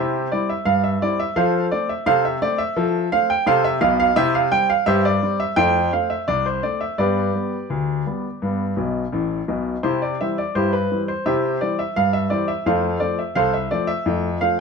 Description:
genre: ragtime piano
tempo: 85 BPM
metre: 2/4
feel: straight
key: C major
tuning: A4 = 440 Hz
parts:
  - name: warm grand piano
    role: solo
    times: 0.0-14.6 s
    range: A1 to G5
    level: -18 LUFS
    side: equal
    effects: none
room: moderate studio reverb, RT60 0.9 s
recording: band playing live in one room, nothing above 10.6 kHz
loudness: -18 LUFS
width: side -5 dB against mid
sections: 0.0-14.6 A section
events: grand piano fill 8.8-9.8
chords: 0.0 C; 1.4 F; 4.2 C; 5.6 F; 7.0 G; 9.8 C; 12.7 F

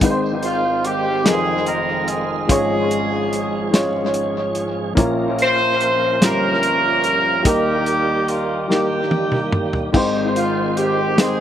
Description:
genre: slow gospel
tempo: 48 BPM (dotted quarters)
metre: 6/8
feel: straight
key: Ab major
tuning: A4 = 437 Hz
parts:
  - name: warm upright piano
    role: accompaniment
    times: 0.0-11.4 s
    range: F1 to Db5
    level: -21 LUFS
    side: left 2 dB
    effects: tape echo
  - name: dark French horn section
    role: sustained chords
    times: 0.0-11.4 s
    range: Ab2 to F4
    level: -34 LUFS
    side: right 2 dB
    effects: none
  - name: tonewheel organ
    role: sustained chords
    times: 0.0-11.4 s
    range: Ab2 to C5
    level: -25 LUFS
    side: right 3 dB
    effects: slow rotary speaker, overdrive, chorus vibrato
  - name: warm soul drum kit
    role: drums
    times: 0.0-11.4 s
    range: hi-hat, kick drum, snare drum, splash cymbal, toms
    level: -20 LUFS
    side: equal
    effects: none
  - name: mellow horn section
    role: melody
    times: 0.4-11.4 s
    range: Bb3 to C5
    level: -19 LUFS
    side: equal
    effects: tape echo
room: light reverb, small room ambience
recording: echo-heavy mix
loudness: -16 LUFS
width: side -10 dB against mid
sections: 0.0-11.4 A section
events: drum fill 8.7-9.9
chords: 0.0 Ab; 1.3 Fm7; 2.5 Db/Ab; 5.0 Bbm; 6.2 Gm7b5; 7.5 Eb; 9.9 Ab

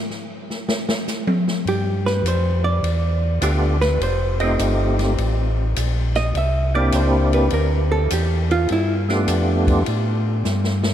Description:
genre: soul jazz organ trio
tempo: 102 BPM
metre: 4/4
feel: swing 68% on 8ths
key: unclear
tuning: A4 = 439 Hz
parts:
  - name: open jazz drum kit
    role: drums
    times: 0.1-10.9 s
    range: hi-hat, kick drum, ride cymbal, snare drum, toms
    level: -26 LUFS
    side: left 1 dB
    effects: none
  - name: hollow-body jazz guitar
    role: accompaniment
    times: 1.7-9.0 s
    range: E4 to E5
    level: -24 LUFS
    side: right 2 dB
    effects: none
  - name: mellow tonewheel organ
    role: bass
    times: 1.7-10.9 s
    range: F1 to A2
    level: -20 LUFS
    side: equal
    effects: chorus vibrato, slow rotary speaker
  - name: percussive tonewheel organ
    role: melody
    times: 3.4-9.8 s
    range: A3 to G4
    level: -23 LUFS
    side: equal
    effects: slow rotary speaker, chorus vibrato
room: moderate cathedral reverb, RT60 6.3 s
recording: in a vast, echoing space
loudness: -17 LUFS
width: side -10 dB against mid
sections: 0.0-10.9 A section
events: hollow-body jazz guitar solo 0.0-10.9; drum solo 0.0-1.7; drum fill 10.4-10.9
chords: 0.0 N.C.; 1.7 G9; 4.0 F9; 6.3 C9; 8.7 G9

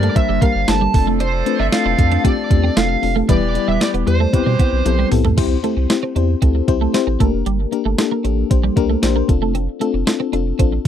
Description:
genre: 1980s-style pop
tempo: 115 BPM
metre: 4/4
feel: straight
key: C major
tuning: A4 = 440 Hz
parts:
  - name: smooth overdriven lead guitar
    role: melody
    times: 0.0-5.1 s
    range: C5 to A5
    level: -22 LUFS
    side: right 2 dB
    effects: none
  - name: FM electric piano with tremolo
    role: accompaniment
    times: 0.0-10.9 s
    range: G3 to D5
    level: -20 LUFS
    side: left 12 dB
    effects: none
  - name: twelve-string electric guitar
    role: riff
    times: 0.0-10.8 s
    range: E3 to E4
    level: -24 LUFS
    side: right 9 dB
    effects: ensemble chorus, tape echo
  - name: warm horn section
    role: stabs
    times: 0.0-5.1 s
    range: E3 to Bb4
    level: -27 LUFS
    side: right 6 dB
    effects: none
  - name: round analog bass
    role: bass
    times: 0.0-10.9 s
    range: E1 to B2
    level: -19 LUFS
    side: right 1 dB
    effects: none
  - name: clean 12-bit digital drum machine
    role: drums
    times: 0.0-10.9 s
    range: crash cymbal, hi-hat, kick drum, snare drum, tambourine, toms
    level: -17 LUFS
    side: right 1 dB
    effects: overdrive
room: little or no reverb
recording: dry, close 1970s-style studio recording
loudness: -14 LUFS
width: side -9 dB against mid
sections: 0.0-5.4 A section; 5.4-10.9 B section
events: drum fill 4.9-5.4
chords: 0.0 Gm; 0.9 Dm7/F; 3.3 Em; 4.3 Cmaj7; 5.4 C; 7.2 Gm; 9.3 Dm7/F

